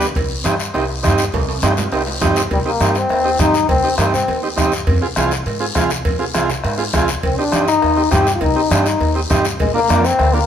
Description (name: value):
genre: latin, cumbia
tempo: 203 BPM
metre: 4/4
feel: straight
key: C minor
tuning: A4 = 439 Hz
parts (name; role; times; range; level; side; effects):
- warm trombone; second line; 0.0-0.1, 2.5-4.4, 7.2-10.5 s; G3 to G4; -16 LUFS; left 4 dB; none
- combo organ; accompaniment; 0.0-10.4 s; Bb3 to Ab4; -20 LUFS; right 4 dB; none
- upright bass; bass; 0.0-10.4 s; Bb1 to Ab2; -21 LUFS; equal; none
- guiro; percussion; 0.0-10.5 s; none; -26 LUFS; left 4 dB; none
- bombo; percussion; 0.2-10.3 s; none; -22 LUFS; left 1 dB; none
- congas; percussion; 0.2-10.3 s; none; -28 LUFS; left 1 dB; none
- cowbell and timbales; percussion; 0.2-10.3 s; none; -27 LUFS; right 2 dB; none
room: moderate stone room reverb, RT60 1.1 s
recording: band playing live in one room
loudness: -14 LUFS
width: side -9 dB against mid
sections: 0.0-2.5 A section; 2.5-10.5 B section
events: drum fill 1.3-2.5; trombone solo 2.5-10.5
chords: 0.2 Cm; 4.9 Fm; 7.2 Cm; 9.6 Bb